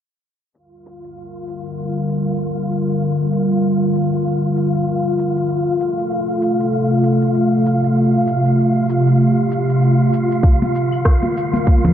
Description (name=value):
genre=organic downtempo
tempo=97 BPM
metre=4/4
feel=swing 59% on 16ths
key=G minor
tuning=A4 = 440 Hz
part: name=warbly tape-like pad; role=sustained chords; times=1.6-11.9 s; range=C3 to Bb4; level=-16 LUFS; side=equal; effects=chorus, built-in reverb, sidechain pumping
part: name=electronic shaker, claves and rim click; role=drums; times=0.5-11.8 s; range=none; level=-26 LUFS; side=equal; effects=low-pass filter on perc, low-pass filter on snare
part: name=wind-like tuned noise texture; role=texture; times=1.0-11.9 s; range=F4 to F5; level=-23 LUFS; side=left 1 dB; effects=built-in reverb
part: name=electronic kick drum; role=drums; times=10.4-11.8 s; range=none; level=-12 LUFS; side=equal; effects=none
part: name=congas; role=percussion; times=10.6-11.9 s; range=none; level=-18 LUFS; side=equal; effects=none
room=moderate huge ambient reverb, RT60 4.8 s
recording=dark, warm production, low-pass filter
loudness=-15 LUFS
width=side -10 dB against mid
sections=0.5-11.9 A section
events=filter sweep on drum 0.5-11.9; filter sweep on ambient pad 0.5-11.9; filter sweep 0.5-11.9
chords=0.5 Gm7; 5.5 F; 10.4 Gm7